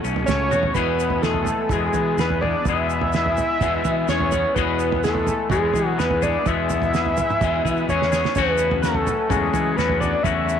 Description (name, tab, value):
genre	psychedelic rock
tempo	126 BPM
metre	4/4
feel	straight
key	E major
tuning	A4 = 440 Hz
part	percussive tonewheel organ	sustained chords	0.0-10.6 s	A3 to G#5	-34 LUFS	right 12 dB	slow rotary speaker, overdrive, chorus vibrato
part	twangy electric guitar	riff	0.0-10.6 s	E2 to G#4	-24 LUFS	left 13 dB	phaser
part	fuzz fingered electric bass	bass	0.0-10.6 s	B1 to E3	-26 LUFS	equal	overdrive
part	tube shaker	percussion	0.0-10.6 s	none	-40 LUFS	right 20 dB	none
part	cloth-damped thuddy drum kit	drums	0.2-10.4 s	kick drum, snare drum, toms	-26 LUFS	right 4 dB	none
part	fat analog lead	melody	0.3-10.6 s	G#4 to E5	-22 LUFS	equal	tape echo
room	light reverb, small room ambience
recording	1960s-style stereo with parts hard left and right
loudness	-18 LUFS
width	side -8 dB against mid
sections	0.8-10.6 A section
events	drum fill 0.5, 7.9-8.4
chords	0.0 F#madd9; 0.8 E; 8.4 F#madd9/E